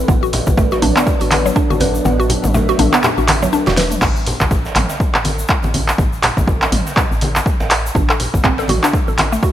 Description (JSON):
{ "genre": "afro house", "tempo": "122 BPM", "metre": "4/4", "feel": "swing 58% on 16ths", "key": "unclear", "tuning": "A4 = 440 Hz", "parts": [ { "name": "dark analog pad", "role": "sustained chords", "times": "0.0-4.0 s", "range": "F#3 to E5", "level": "-22 LUFS", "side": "equal", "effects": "chorus, phaser, sidechain pumping" }, { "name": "woody FM bass", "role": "bass", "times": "0.0-9.4 s", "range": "E1 to A1", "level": "-20 LUFS", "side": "equal", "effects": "sidechain pumping" }, { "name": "mallet-like synth pluck", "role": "arpeggios", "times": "0.1-3.9, 8.0-9.5 s", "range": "F#3 to B4", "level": "-19 LUFS", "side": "equal", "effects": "chorus, sidechain pumping, digital delay" }, { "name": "electronic kick drum", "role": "drums", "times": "0.1-9.5 s", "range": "none", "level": "-17 LUFS", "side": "equal", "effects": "overdrive, studio reverb" }, { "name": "congas", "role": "percussion", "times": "0.1-9.3 s", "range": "none", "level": "-23 LUFS", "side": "left 2 dB", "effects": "none" }, { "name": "djembe", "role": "percussion", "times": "0.1-9.3 s", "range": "none", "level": "-26 LUFS", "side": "right 3 dB", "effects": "none" }, { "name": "tube shaker", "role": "percussion", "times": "0.1-9.5 s", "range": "none", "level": "-33 LUFS", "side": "left 2 dB", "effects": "none" }, { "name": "deep house drum kit", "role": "drums", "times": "0.3-9.3 s", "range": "crash cymbal, handclaps, hi-hat, snare drum, toms", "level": "-18 LUFS", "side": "right 1 dB", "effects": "overdrive, studio reverb" } ], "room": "light reverb", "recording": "none", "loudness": "-13 LUFS", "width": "side -12 dB against mid", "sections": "0.0-4.0 A section; 4.0-9.5 B section", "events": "drop 0.0-4.0; kick drops out 2.1-4.0; drum fill 3.6-4.0", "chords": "0.1 Bm/A; 4.0 N.C.; 8.0 D/A" }